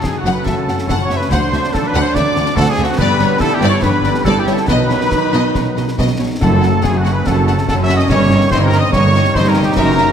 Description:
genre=cinematic, heroic adventure film score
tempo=142 BPM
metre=4/4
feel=straight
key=unclear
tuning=A4 = 439 Hz
part: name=clear oboe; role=second line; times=0.0-10.1 s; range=F#4 to E5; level=-26 LUFS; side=right 2 dB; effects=none
part: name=dark studio violin section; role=second line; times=0.0-10.1 s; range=F#5 to E6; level=-25 LUFS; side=left 3 dB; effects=none
part: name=mellow hollow silver concert flute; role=second line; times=0.0-10.1 s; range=F#5 to E6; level=-26 LUFS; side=left 3 dB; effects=none
part: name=warm symphonic viola section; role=accompaniment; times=0.0-10.1 s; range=A#3 to E4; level=-22 LUFS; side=equal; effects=none
part: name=bright trombone section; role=sustained chords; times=0.0-10.1 s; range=C#3 to G3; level=-26 LUFS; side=right 3 dB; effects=none
part: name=dark French horn section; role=sustained chords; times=0.0-10.1 s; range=A3 to F#4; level=-26 LUFS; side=left 4 dB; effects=none
part: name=concert harp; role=arpeggios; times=0.0-10.1 s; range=F#2 to G4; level=-26 LUFS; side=left 9 dB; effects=none
part: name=concert snare drum, concert bass drum and clash cymbals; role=drums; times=0.0-10.1 s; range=none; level=-22 LUFS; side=equal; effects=none
part: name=mellow trumpet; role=stabs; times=0.1-10.1 s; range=F#4 to E5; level=-20 LUFS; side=right 2 dB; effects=none
part: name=clear symphonic double bass section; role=bass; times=0.2-10.1 s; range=F#1 to D2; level=-20 LUFS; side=right 2 dB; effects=none
part: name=warm symphonic violin section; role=melody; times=0.3-10.1 s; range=C#5 to F#5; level=-24 LUFS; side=left 5 dB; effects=none
part: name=rich symphonic cello section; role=bass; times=0.3-10.1 s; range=D2 to B2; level=-19 LUFS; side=right 2 dB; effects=none
part: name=timpani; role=percussion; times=6.4-7.0 s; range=F#2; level=-18 LUFS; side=left 2 dB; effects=none
room=moderate scoring stage reverb, RT60 2.1 s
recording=none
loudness=-12 LUFS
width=side -8 dB against mid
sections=0.0-10.1 A section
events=none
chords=0.0 F#m; 1.3 D7; 3.0 G; 4.7 B; 6.4 F#m; 8.1 D#7/G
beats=0.05 0.47 0.89 | 1.31 1.74 2.15 2.57 | 2.99 3.41 3.83 4.25 | 4.68 5.12 5.55 5.98 | 6.41 6.84 7.26 7.68 | 8.10 8.52 8.93 9.35 | 9.77

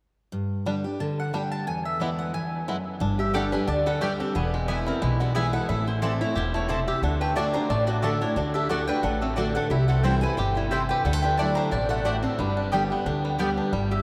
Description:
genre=bluegrass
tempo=179 BPM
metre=4/4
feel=swing 55% on 8ths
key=G major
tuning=A4 = 440 Hz
part: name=picked steel-string acoustic guitar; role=accompaniment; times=0.3-14.0 s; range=E2 to G4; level=-30 LUFS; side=equal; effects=none
part: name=bluegrass banjo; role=melody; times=0.7-14.0 s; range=E3 to G4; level=-35 LUFS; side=equal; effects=none
part: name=mandolin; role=melody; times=1.0-14.0 s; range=G#4 to Bb5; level=-34 LUFS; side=equal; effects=none
part: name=upright bass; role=bass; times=3.0-14.0 s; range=E1 to D2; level=-31 LUFS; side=equal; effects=none
part: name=lap resonator guitar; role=second line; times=3.2-14.0 s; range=B3 to D5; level=-33 LUFS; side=equal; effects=none
part: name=mandolin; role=stabs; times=3.3-13.5 s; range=A3 to A5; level=-35 LUFS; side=equal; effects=none
room=wet huge ambient reverb, RT60 8.3 s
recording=in a vast, echoing space, faint mains hum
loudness=-25 LUFS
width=mono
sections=0.3-3.0 A section; 3.0-13.7 B section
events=none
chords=0.3 G5; 1.7 E; 3.0 Gsus2; 4.3 E; 5.7 Am; 7.0 D; 9.7 C; 11.1 Dadd9; 12.4 G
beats=| 0.32 0.66 0.99 1.33 | 1.67 2.00 2.34 2.67 | 3.01 3.34 3.68 4.01 | 4.35 4.68 5.02 5.36 | 5.69 6.03 6.36 6.70 | 7.03 7.37 7.70 8.04 | 8.37 8.71 9.04 9.38 | 9.71 10.05 10.38 10.72 | 11.05 11.39 11.72 12.06 | 12.39 12.73 13.06 13.40 | 13.73

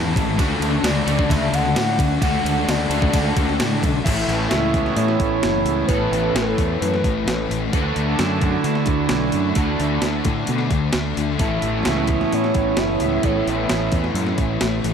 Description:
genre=rock, shoegaze and dream pop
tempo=131 BPM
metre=4/4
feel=straight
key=A major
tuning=A4 = 441 Hz
part: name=warbly nostalgic lead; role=melody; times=0.0-7.5, 11.4-14.4 s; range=A4 to A5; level=-26 LUFS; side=left 1 dB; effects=chorus, ping-pong delay
part: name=overdriven semi-hollow guitar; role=riff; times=0.0-14.9 s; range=A2 to A4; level=-26 LUFS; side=equal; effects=analog chorus
part: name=thick fuzz guitar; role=riff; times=0.0-14.9 s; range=A2 to D4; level=-25 LUFS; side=left 8 dB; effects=distortion, ensemble chorus
part: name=twangy electric guitar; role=riff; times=0.0-14.9 s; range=A2 to F#4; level=-26 LUFS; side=right 8 dB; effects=reverse reverb
part: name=growling fingered electric bass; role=bass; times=0.0-14.9 s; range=F#1 to D3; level=-24 LUFS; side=equal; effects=overdrive
part: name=clean 12-bit digital drum machine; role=drums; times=0.2-14.9 s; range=crash cymbal, hi-hat, kick drum, ride cymbal, snare drum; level=-24 LUFS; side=equal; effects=overdrive
room=moderate huge ambient reverb, RT60 4.4 s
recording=dreamy mix soaked in reverb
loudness=-17 LUFS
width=side -7 dB against mid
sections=0.0-4.1 A section; 4.1-14.9 B section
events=none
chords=0.4 Dadd9; 4.1 Aadd9; 7.7 Dadd9; 11.4 Aadd9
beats=| 0.39 0.84 1.30 1.76 | 2.22 2.68 3.14 3.60 | 4.05 4.51 4.97 5.43 | 5.89 6.35 6.81 7.27 | 7.73 8.19 8.64 9.10 | 9.56 10.02 10.48 10.94 | 11.40 11.86 12.32 12.78 | 13.23 13.69 14.15 14.61

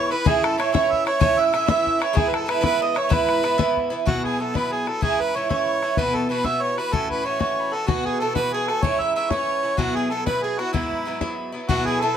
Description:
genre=celtic folk, Celtic jig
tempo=126 BPM (dotted quarters)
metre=6/8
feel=straight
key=E major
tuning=A4 = 440 Hz
part: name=mellow harmonica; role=melody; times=0.0-12.2 s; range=E4 to E5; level=-24 LUFS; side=right 2 dB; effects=none
part: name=mandolin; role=second line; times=0.0-3.7, 7.9-12.2 s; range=E4 to E5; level=-30 LUFS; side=right 2 dB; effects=none
part: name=wooden whistle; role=second line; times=0.0-12.2 s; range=E5 to F#6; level=-31 LUFS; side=left 6 dB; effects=none
part: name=Irish bouzouki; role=accompaniment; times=0.0-12.2 s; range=G#2 to F#4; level=-24 LUFS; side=right 3 dB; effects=none
part: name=bodhran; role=percussion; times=0.3-11.9 s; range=none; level=-23 LUFS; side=left 5 dB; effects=none
room=moderate studio reverb, RT60 0.6 s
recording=none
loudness=-19 LUFS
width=side -8 dB against mid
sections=0.0-4.1 A section; 4.1-11.7 B section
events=none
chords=0.3 A; 2.2 E; 4.1 Esus2; 5.0 C#m; 6.0 Bsus4; 6.9 F#m7; 7.9 Esus2; 8.8 C#m; 9.8 Bsus4; 10.7 Eadd9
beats=| 0.26 0.73 | 1.21 1.69 | 2.16 2.64 | 3.12 3.59 | 4.07 4.54 | 5.02 5.50 | 5.97 6.45 | 6.93 7.40 | 7.88 8.36 | 8.83 9.31 | 9.79 10.26 | 10.74 11.21 | 11.69 12.17

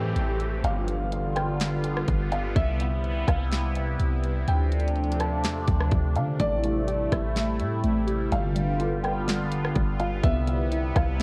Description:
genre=hip hop, atmospheric cloud-rap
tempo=125 BPM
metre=4/4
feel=half-time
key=unclear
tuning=A4 = 440 Hz
part: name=sweeping resonant pad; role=sustained chords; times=0.0-11.2 s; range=C3 to G4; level=-31 LUFS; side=equal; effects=chorus, phaser, sidechain pumping
part: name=clean 808-style bass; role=bass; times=0.0-11.2 s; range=G1 to D3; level=-30 LUFS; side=equal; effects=none
part: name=downlifter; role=sound effects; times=0.0-2.6 s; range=none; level=-44 LUFS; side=equal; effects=none
part: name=trap drum kit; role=drums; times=0.2-11.2 s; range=hi-hat, kick drum, rim click, snare drum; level=-30 LUFS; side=equal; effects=none
part: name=felt-muted upright piano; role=melody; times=0.6-11.2 s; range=D5 to A5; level=-35 LUFS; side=equal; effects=digital delay
part: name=soft round pluck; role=arpeggios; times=6.4-11.2 s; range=G3 to G4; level=-34 LUFS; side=equal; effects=chorus, digital delay
room=moderate concert hall reverb, RT60 2.0 s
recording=worn, warbling old tape, cassette tape, warbly pitch drift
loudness=-26 LUFS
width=mono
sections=0.0-11.2 A section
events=none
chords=0.0 Am7; 0.6 G7; 2.6 Cmaj7; 4.5 Dm7; 6.4 Am7; 8.3 G7; 10.2 Cmaj7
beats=0.16 | 0.64 1.12 1.60 2.08 | 2.56 3.04 3.52 4.00 | 4.48 4.96 5.44 5.92 | 6.40 6.88 7.36 7.84 | 8.32 8.80 9.28 9.76 | 10.24 10.72 11.20

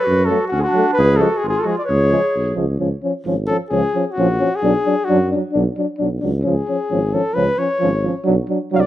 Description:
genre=balkan folk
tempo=131 BPM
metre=2/4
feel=swing 54% on 16ths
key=C# phrygian dominant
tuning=A4 = 439 Hz
part: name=mellow flugelhorn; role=melody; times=0.0-8.9 s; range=F#4 to E#5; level=-19 LUFS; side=left 2 dB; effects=plate reverb
part: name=mellow clarinet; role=second line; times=0.0-2.6 s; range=C#4 to B4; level=-23 LUFS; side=right 3 dB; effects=plate reverb
part: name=mellow tuba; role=bass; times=0.1-8.9 s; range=G#1 to F#2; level=-20 LUFS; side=equal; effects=none
part: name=dark trombone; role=accompaniment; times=0.3-8.8 s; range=E#3 to F#3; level=-23 LUFS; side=right 5 dB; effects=none
part: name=warm euphonium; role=accompaniment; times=0.3-8.8 s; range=G#3 to D4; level=-22 LUFS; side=left 4 dB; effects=plate reverb
room=moderate small room reverb, RT60 0.6 s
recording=rough home demo mix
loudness=-15 LUFS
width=side -13 dB against mid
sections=0.0-2.8 A section; 2.8-8.9 B section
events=flugelhorn solo 2.8-8.9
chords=0.0 F#m; 1.0 C#; 4.6 Bm; 6.5 C#; 8.3 Bm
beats=| 0.07 0.53 | 0.98 1.44 | 1.89 2.35 | 2.80 3.26 | 3.71 4.17 | 4.63 5.08 | 5.54 6.00 | 6.46 6.91 | 7.37 7.83 | 8.29 8.74

